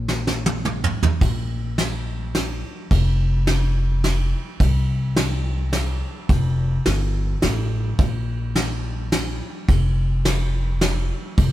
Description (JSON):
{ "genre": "honky-tonk and classic country", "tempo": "106 BPM", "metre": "3/4", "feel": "swing 62% on 8ths", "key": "unclear", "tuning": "A4 = 439 Hz", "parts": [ { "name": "upright bass", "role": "bass", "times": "0.0-11.5 s", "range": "F1 to C2", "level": "-21 LUFS", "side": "equal", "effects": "none" }, { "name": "soft brush drum kit", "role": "drums", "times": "0.1-11.5 s", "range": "kick drum, ride cymbal, snare drum, toms", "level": "-22 LUFS", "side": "right 1 dB", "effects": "none" } ], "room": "light reverb", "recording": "heard from further back in the room", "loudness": "-19 LUFS", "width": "side -14 dB against mid", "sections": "0.0-1.2 A section; 1.2-11.5 B section", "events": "drum fill 0.1-1.2", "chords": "none", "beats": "0.09 0.65 | 1.22 1.78 2.35 | 2.91 3.47 4.04 | 4.60 5.17 5.73 | 6.30 6.86 7.43 | 7.99 8.56 9.12 | 9.69 10.25 10.82 | 11.38" }